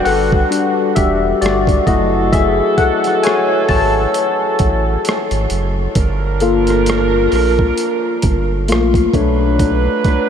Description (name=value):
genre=R&B, neo-soul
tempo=66 BPM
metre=4/4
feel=swing 58% on 16ths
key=unclear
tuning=A4 = 438 Hz
part: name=barky tine electric piano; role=accompaniment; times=0.0-10.3 s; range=F#3 to A5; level=-15 LUFS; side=left 4 dB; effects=analog chorus
part: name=bright saxophone section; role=stabs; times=0.0-10.3 s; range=D3 to B4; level=-21 LUFS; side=right 6 dB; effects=tape echo
part: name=round analog bass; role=bass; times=0.1-9.9 s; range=E1 to B1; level=-18 LUFS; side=right 1 dB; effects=none
part: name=boom bap sampler-style drum kit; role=drums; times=0.1-10.3 s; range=hi-hat, kick drum, rim click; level=-20 LUFS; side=right 1 dB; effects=overdrive
room=moderate huge ambient reverb, RT60 7.5 s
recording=dreamy mix soaked in reverb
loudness=-12 LUFS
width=side -8 dB against mid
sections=0.0-10.3 A section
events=tine electric piano solo 0.0-10.3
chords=0.0 Em9; 1.9 F#m9; 6.0 Gm9; 9.1 Bm9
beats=0.51 1.42 | 2.32 3.23 4.14 5.05 | 5.96 6.87 7.78 8.69 | 9.60